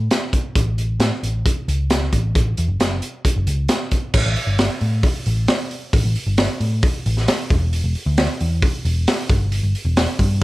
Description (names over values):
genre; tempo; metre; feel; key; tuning
indie rock; 134 BPM; 4/4; straight; unclear; A4 = 440 Hz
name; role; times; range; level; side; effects
hollow-body short-scale picked electric bass; bass; 0.0-10.4 s; E1 to A2; -19 LUFS; equal; none
raw garage drum kit; drums; 0.1-10.4 s; crash cymbal, hi-hat, kick drum, snare drum; -19 LUFS; equal; none
room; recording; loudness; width
little or no reverb; none; -17 LUFS; side -18 dB against mid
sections
0.0-4.1 A section; 4.1-10.4 B section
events
none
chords
none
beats
0.10 | 0.55 0.99 1.44 1.89 | 2.34 2.79 3.24 3.69 | 4.13 4.58 5.03 5.48 | 5.93 6.38 6.82 7.27 | 7.72 8.17 8.62 9.06 | 9.51 9.96 10.41